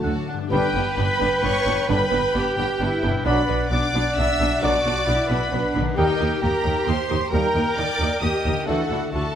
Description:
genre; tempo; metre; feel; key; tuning
cinematic; 132 BPM; 3/4; straight; unclear; A4 = 440 Hz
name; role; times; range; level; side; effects
rich symphonic violin section; melody; 0.0-9.4 s; F#5 to E6; -28 LUFS; left 2 dB; none
mellow clarinet; second line; 0.0-9.4 s; A4 to D5; -30 LUFS; left 2 dB; none
rich symphonic violin section; second line; 0.0-9.4 s; D4 to E5; -31 LUFS; equal; none
warm cor anglais; second line; 0.0-9.4 s; E5 to G5; -30 LUFS; right 2 dB; none
warm symphonic viola section; accompaniment; 0.0-9.2 s; A3 to E4; -30 LUFS; right 1 dB; none
clear trombone section; sustained chords; 0.0-8.8 s; A2 to A3; -30 LUFS; right 2 dB; none
warm French horn section; sustained chords; 0.0-8.8 s; A3 to A4; -30 LUFS; left 4 dB; none
concert harp; arpeggios; 0.0-9.4 s; G2 to A5; -33 LUFS; left 8 dB; none
rich symphonic double bass section; bass; 0.0-9.2 s; G1 to Eb2; -26 LUFS; right 2 dB; none
warm symphonic cello section; bass; 0.0-9.4 s; D3 to B4; -28 LUFS; right 1 dB; none
mellow hollow flute section; second line; 0.1-9.4 s; F#4 to A5; -30 LUFS; equal; none
dark trumpet; stabs; 0.5-8.8 s; A4 to D5; -32 LUFS; right 2 dB; none
room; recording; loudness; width
light reverb; close, detailed microphones; -19 LUFS; side -9 dB against mid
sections
0.5-9.4 A section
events
none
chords
0.0 D; 0.5 G; 3.3 Bm; 6.0 Eb; 8.7 Dadd9

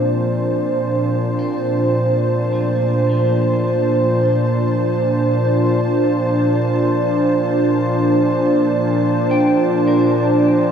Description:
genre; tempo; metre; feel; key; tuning
ambient; free time; none; none; Bb major; A4 = 440 Hz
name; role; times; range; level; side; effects
warm analog pad; sustained chords; 0.0-10.7 s; Bb2 to C5; -15 LUFS; equal; wide subtle chorus
warm studio violin section; texture; 0.0-10.7 s; A5; -36 LUFS; left 2 dB; none
clean electric guitar; arpeggios; 1.4-10.7 s; F3 to G5; -32 LUFS; left 2 dB; lush chorus, diffuse ambient delay
room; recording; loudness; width
wet cathedral reverb, RT60 5.8 s; none; -15 LUFS; side -8 dB against mid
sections
0.0-10.7 A section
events
fade-in on clean electric guitar 0.0-10.7; fade-in on violin section 0.0-10.7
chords
0.0 Bbmaj9

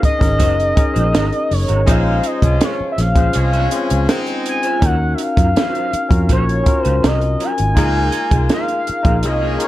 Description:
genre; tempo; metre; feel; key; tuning
lush 1970s-style soul; 82 BPM; 4/4; straight; Bb minor; A4 = 436 Hz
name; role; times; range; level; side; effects
expressive synth lead; melody; 0.0-9.7 s; Db5 to Ab5; -20 LUFS; left 1 dB; chorus
barky tine electric piano; accompaniment; 0.0-9.7 s; C4 to C5; -23 LUFS; left 3 dB; overdrive
electric guitar through a small old amp; riff; 0.0-9.6 s; F3 to Db5; -28 LUFS; right 4 dB; ensemble chorus
vintage muted fingered electric bass; bass; 0.0-9.6 s; Gb1 to Gb2; -17 LUFS; equal; none
compact cocktail drum kit; drums; 0.0-9.7 s; hi-hat, kick drum, snare drum; -17 LUFS; equal; none
warm horn section; stabs; 1.9-9.7 s; F3 to C5; -24 LUFS; left 1 dB; none
room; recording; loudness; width
small room ambience; dark, warm production; -14 LUFS; side -15 dB against mid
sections
0.0-9.7 A section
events
none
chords
0.0 Gb69; 1.9 Bbm9; 4.8 Ebm9; 7.8 Db69

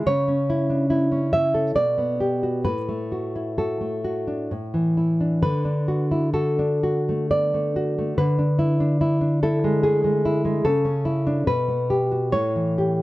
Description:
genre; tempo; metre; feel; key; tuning
romantic piece for solo classical guitar; 61-74 BPM; 3/4; rubato; D major; A4 = 440 Hz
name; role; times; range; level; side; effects
nylon-string guitar; solo; 0.0-13.0 s; A2 to E5; -20 LUFS; equal; none
room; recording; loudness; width
light reverb; dark, warm production; -20 LUFS; side -18 dB against mid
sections
0.0-13.0 A section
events
none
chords
0.1 A/C#; 1.8 G/B; 2.7 D/A; 4.5 A5; 5.5 D; 8.2 E7/D; 10.6 A/C#; 11.5 G/B; 12.3 A7

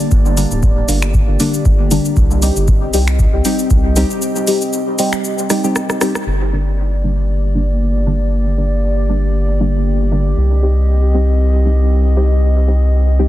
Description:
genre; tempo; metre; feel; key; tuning
dub techno; 117 BPM; 4/4; swing 55% on 16ths; G minor; A4 = 440 Hz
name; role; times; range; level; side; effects
dark analog pad; sustained chords; 0.0-13.3 s; Bb3 to Eb5; -23 LUFS; left 1 dB; chorus, sidechain pumping
deep mellow chord stab; stabs; 0.0-13.3 s; D3 to G4; -19 LUFS; equal; chorus, phaser, sidechain pumping, dub echo
booming analog drum machine; drums; 0.0-6.2 s; finger snaps, hi-hat, rim click, shaker; -22 LUFS; equal; low-pass filter on perc, studio reverb, low-pass filter on hats, soft clipping on snare, low-pass filter on snare
round analog bass; bass; 0.1-13.3 s; D1 to C2; -14 LUFS; equal; sidechain pumping
electronic kick drum; drums; 0.1-3.8 s; none; -14 LUFS; equal; studio reverb
room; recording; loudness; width
light reverb, digital ambience; dense, heavily limited modern master; -12 LUFS; side -14 dB against mid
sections
0.0-6.3 A section; 6.3-13.3 B section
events
break 4.2-6.3; drum fill 5.5-6.3; band accent 6.1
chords
0.0 Gm; 2.2 Cm; 6.3 Gm; 10.4 Cm

